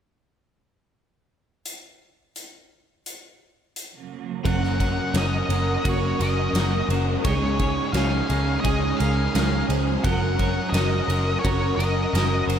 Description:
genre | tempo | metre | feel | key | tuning
rock, shoegaze and dream pop | 86 BPM | 4/4 | straight | Gb major | A4 = 439 Hz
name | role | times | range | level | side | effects
big rock drum kit | drums | 1.7-12.6 s | hi-hat, kick drum, ride cymbal, snare drum | -28 LUFS | equal | none
twelve-string electric guitar | arpeggios | 4.4-12.6 s | Gb4 to Db5 | -34 LUFS | right 2 dB | wide subtle chorus, tape echo
crunchy overdriven guitar | riff | 4.4-12.6 s | Gb2 to Bb4 | -28 LUFS | right 9 dB | reverse reverb
raw garage guitar | riff | 4.4-12.6 s | Db3 to Bb4 | -29 LUFS | left 8 dB | overdrive, wide subtle chorus
octave-fuzz lead guitar | melody | 4.5-12.4 s | Db5 to Gb5 | -29 LUFS | left 1 dB | distortion, tape echo
string machine, violas | sustained chords | 4.5-12.6 s | Db4 to Eb6 | -32 LUFS | right 1 dB | ensemble chorus
vintage muted picked electric bass | bass | 4.5-12.6 s | Gb1 to Db2 | -24 LUFS | equal | none
room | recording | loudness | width
moderate huge ambient reverb, RT60 6.4 s | dreamy mix soaked in reverb | -20 LUFS | side -8 dB against mid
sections
1.7-4.4 A section; 4.4-12.6 B section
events
none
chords
1.7 N.C.; 4.4 Gb6; 7.2 Dbsus2; 10.0 Gb6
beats
| 1.65 2.35 3.05 3.75 | 4.45 5.15 5.85 6.55 | 7.25 7.95 8.65 9.35 | 10.04 10.74 11.45 12.14

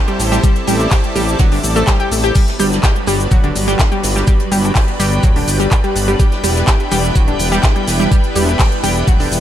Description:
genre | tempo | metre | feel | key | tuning
progressive house | 125 BPM | 4/4 | straight | G major | A4 = 440 Hz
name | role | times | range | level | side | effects
lush unison pad | sustained chords | 0.0-9.4 s | F#3 to D5 | -20 LUFS | equal | chorus, sidechain pumping
analog pluck | arpeggios | 0.1-9.3 s | D3 to G5 | -19 LUFS | equal | chorus, sidechain pumping, digital delay
pop drum kit | drums | 0.1-9.4 s | crash cymbal, handclaps, hi-hat, shaker | -22 LUFS | left 1 dB | sidechain pumping on hats, small room ambience, sidechain pumping on perc, sidechain pumping on cymbals
fat analog bass | bass | 0.2-9.4 s | D1 to A1 | -18 LUFS | equal | sidechain pumping
jazz brush drum kit | drums | 0.2-9.4 s | hi-hat, shaker, snare drum | -27 LUFS | right 2 dB | sidechain pumping on hats, high-pass filter on hats, small room ambience, high-pass filter on snare, sidechain pumping on perc, high-pass filter on perc, high-pass filter on room
electronic kick drum | drums | 0.4-9.2 s | none | -13 LUFS | equal | small room ambience
backwards swelling texture | texture | 4.1-9.4 s | G5 | -28 LUFS | left 1 dB | built-in reverb, sidechain pumping
room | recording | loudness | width
small room ambience | none | -12 LUFS | side -11 dB against mid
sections
0.0-9.4 A section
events
none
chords
0.0 Am7; 2.4 Gmaj7; 6.2 Em7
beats
| 0.44 0.92 1.40 1.88 | 2.36 2.84 3.32 3.80 | 4.28 4.76 5.24 5.72 | 6.20 6.68 7.16 7.64 | 8.12 8.60 9.08

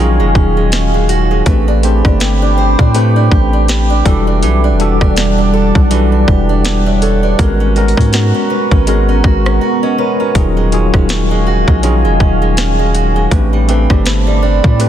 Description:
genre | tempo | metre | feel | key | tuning
contemporary R&B | 81 BPM | 4/4 | swing 58% on 16ths | unclear | A4 = 442 Hz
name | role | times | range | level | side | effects
tine electric piano | accompaniment | 0.0-14.9 s | F#3 to E5 | -17 LUFS | left 2 dB | overdrive, fast stereo tremolo
deep dark ambient pad | sustained chords | 0.0-14.9 s | G3 to D6 | -18 LUFS | right 1 dB | chorus, built-in reverb
fingerpicked acoustic archtop guitar | arpeggios | 0.0-14.9 s | A2 to C5 | -19 LUFS | right 7 dB | tape echo
long sustained 808-style bass | bass | 0.0-14.9 s | D#1 to A2 | -13 LUFS | equal | none
trap drum kit | drums | 0.4-14.9 s | hi-hat, kick drum, rim click, snare drum | -14 LUFS | equal | overdrive, vintage 12-bit sampler grit
room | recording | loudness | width
little or no reverb | dense, heavily limited modern master | -9 LUFS | side -10 dB against mid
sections
0.0-14.9 A section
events
break 9.6-10.4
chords
0.0 D#m11; 1.5 Am11; 4.1 Em11; 7.4 G#m11; 10.4 D#m11; 13.3 Am11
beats
0.72 | 1.46 2.20 2.94 3.69 | 4.43 5.17 5.91 6.65 | 7.39 8.13 8.87 9.61 | 10.35 11.09 11.83 12.57 | 13.31 14.06 14.80

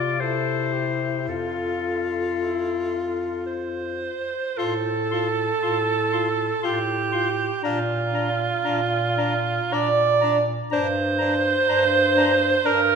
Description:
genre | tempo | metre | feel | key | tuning
classical, lyrical piece for single-reed quartet | 52-62 BPM | 3/4 | rubato | F major | A4 = 440 Hz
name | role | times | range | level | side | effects
bright clarinet | melody | 0.0-12.8 s | A4 to C6 | -31 LUFS | left 7 dB | none
bright alto saxophone | second line | 0.0-13.0 s | E4 to D5 | -22 LUFS | right 4 dB | none
warm tenor saxophone | accompaniment | 0.0-12.8 s | D4 to F4 | -28 LUFS | left 5 dB | none
mellow bass clarinet | bass | 0.0-13.0 s | F2 to C3 | -28 LUFS | equal | none
room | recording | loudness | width
wet scoring stage reverb, RT60 2.0 s | recorded in a church or concert hall | -20 LUFS | side -6 dB against mid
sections
0.0-4.6 A section; 4.6-13.0 B section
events
none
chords
0.2 C; 1.3 F; 4.6 F/A; 7.6 Bb; 10.7 Gm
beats
0.20 | 1.28 2.38 3.47 | 4.59 5.63 6.64 | 7.64 8.64 9.72 | 10.71 11.69 12.67

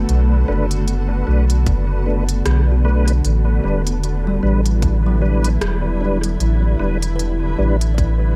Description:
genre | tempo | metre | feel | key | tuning
ambient dub | 76 BPM | 4/4 | swing 57% on 16ths | unclear | A4 = 440 Hz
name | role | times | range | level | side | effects
granular cloud pad | sustained chords | 0.0-8.4 s | D3 to A4 | -27 LUFS | equal | built-in reverb
soft dub sub bass | bass | 0.0-8.4 s | E1 to B1 | -19 LUFS | equal | none
organic electronic drum kit | drums | 0.1-8.2 s | hi-hat, rim click | -32 LUFS | equal | dub echo
tonewheel organ | stabs | 0.5-7.8 s | G3 to B4 | -27 LUFS | equal | chorus vibrato, slow rotary speaker, dub echo
electronic kick drum | drums | 1.7-8.2 s | none | -22 LUFS | equal | none
kalimba | arpeggios | 2.7-8.4 s | F#3 to D5 | -30 LUFS | equal | tape echo
room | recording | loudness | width
digital ambience | none | -18 LUFS | mono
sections
0.0-8.4 A section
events
none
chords
0.0 Bm7; 3.2 A9sus4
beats
| 0.09 0.87 1.66 2.45 | 3.24 4.03 4.82 5.61 | 6.40 7.19 7.98

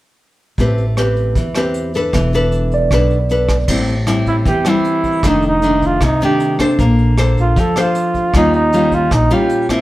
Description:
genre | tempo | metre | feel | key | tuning
bossa nova | 155 BPM | 4/4 | straight | A minor | A4 = 440 Hz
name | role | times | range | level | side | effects
nylon-string guitar | accompaniment | 0.6-9.8 s | F2 to C5 | -16 LUFS | left 1 dB | none
upright bass | bass | 0.6-9.3 s | E1 to F2 | -17 LUFS | equal | none
vintage brush drum kit | drums | 0.6-9.8 s | crash cymbal, hi-hat, kick drum, rim click | -21 LUFS | equal | none
tine electric piano | accompaniment | 1.0-3.8 s | B4 to D5 | -22 LUFS | right 6 dB | overdrive
warm flugelhorn | melody | 4.3-9.7 s | Eb4 to A4 | -16 LUFS | right 2 dB | none
room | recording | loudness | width
wet studio reverb, RT60 0.7 s | heard from further back in the room | -12 LUFS | side -16 dB against mid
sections
0.6-3.7 A section; 3.7-9.8 B section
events
none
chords
0.6 Am9; 2.1 E7sus4; 3.7 Am7; 5.2 F13; 6.8 Bbmaj9; 8.3 D#9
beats
| 0.58 0.97 1.36 1.75 | 2.13 2.52 2.91 3.30 | 3.69 4.08 4.46 4.85 | 5.24 5.63 6.01 6.40 | 6.79 7.18 7.56 7.95 | 8.34 8.72 9.11 9.50

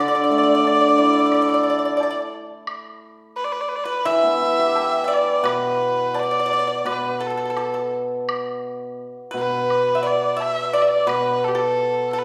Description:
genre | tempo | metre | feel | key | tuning
chinese traditional, Chinese chamber ensemble | 86 BPM | 4/4 | rubato | D zhi mode | A4 = 440 Hz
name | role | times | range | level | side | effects
clear erhu | melody | 0.0-12.2 s | G4 to E5 | -24 LUFS | equal | none
pipa | second line | 0.0-12.2 s | A4 to E5 | -26 LUFS | equal | none
hammered dulcimer | accompaniment | 0.0-12.2 s | B2 to B4 | -24 LUFS | equal | none
woodblock | percussion | 1.3-11.3 s | none | -34 LUFS | equal | none
room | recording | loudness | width
wet recital hall reverb, RT60 1.5 s | heard from further back in the room | -20 LUFS | mono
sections
0.0-12.2 A section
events
none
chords
none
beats
0.64 1.32 2.00 | 2.69 3.37 4.06 4.76 | 5.46 6.16 6.86 7.57 | 8.28 8.99 9.69 10.39 | 11.09 11.78

